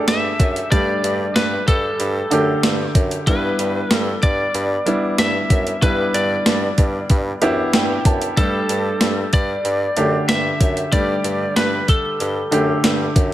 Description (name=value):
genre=1980s-style pop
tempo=94 BPM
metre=4/4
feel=straight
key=G major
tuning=A4 = 441 Hz
part: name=lightly driven lead guitar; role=melody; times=0.0-13.1 s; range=A4 to E5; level=-22 LUFS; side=left 1 dB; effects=tape echo
part: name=clear grand piano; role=accompaniment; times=0.0-13.3 s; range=D3 to A5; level=-22 LUFS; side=right 1 dB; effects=none
part: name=clear bassoon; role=bass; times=0.1-13.3 s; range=F#2 to G2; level=-24 LUFS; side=equal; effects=none
part: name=clean 12-bit digital drum machine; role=drums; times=0.1-13.3 s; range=hi-hat, kick drum, snare drum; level=-18 LUFS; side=equal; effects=overdrive, gated reverb
room=light reverb, digital ambience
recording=none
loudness=-16 LUFS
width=side -14 dB against mid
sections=0.0-13.3 A section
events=grand piano fill 7.1-8.4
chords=0.0 Gsus2; 3.3 Em7; 8.4 Gsus2